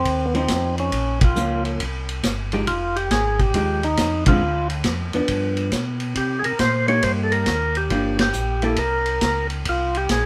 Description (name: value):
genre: soul jazz organ trio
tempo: 137 BPM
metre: 4/4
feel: swing 66% on 8ths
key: unclear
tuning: A4 = 439 Hz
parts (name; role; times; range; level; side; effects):
- percussive tonewheel organ; melody; 0.0-10.3 s; Cb4 to Db5; -24 LUFS; equal; slow rotary speaker
- mellow tonewheel organ; bass; 0.0-10.3 s; F1 to C3; -28 LUFS; equal; slow rotary speaker
- vintage drum kit; drums; 0.1-10.2 s; hi-hat, kick drum, ride cymbal, snare drum; -27 LUFS; equal; none
- vintage hollow-body jazz guitar; accompaniment; 0.3-8.8 s; D3 to G4; -26 LUFS; equal; none
room: light reverb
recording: none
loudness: -21 LUFS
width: mono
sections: 0.0-10.3 A section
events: band accent 1.1, 4.2, 8.1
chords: 0.0 Ab6 (rootless); 0.9 Bbm; 1.8 C5; 2.7 Fm9; 4.4 Dm6; 5.3 G7; 6.2 Cm7; 7.9 Gm7; 8.8 Bbmadd9/C; 9.7 Fmadd9